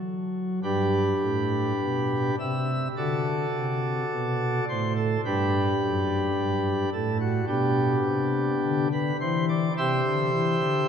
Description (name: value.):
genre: classical, chorale-style piece for pipe organ.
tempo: 53 BPM.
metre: 4/4.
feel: rubato.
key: G major.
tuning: A4 = 441 Hz.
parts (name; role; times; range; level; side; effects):
pipe organ, sparkling flutes; solo; 0.0-10.9 s; F#2 to E5; -23 LUFS; equal; none.
room: wet cathedral reverb, RT60 4.7 s.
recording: none.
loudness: -23 LUFS.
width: side -7 dB against mid.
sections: 0.6-10.9 A section.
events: none.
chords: 0.0 N.C.; 0.6 G; 3.0 D; 5.2 G; 9.8 C.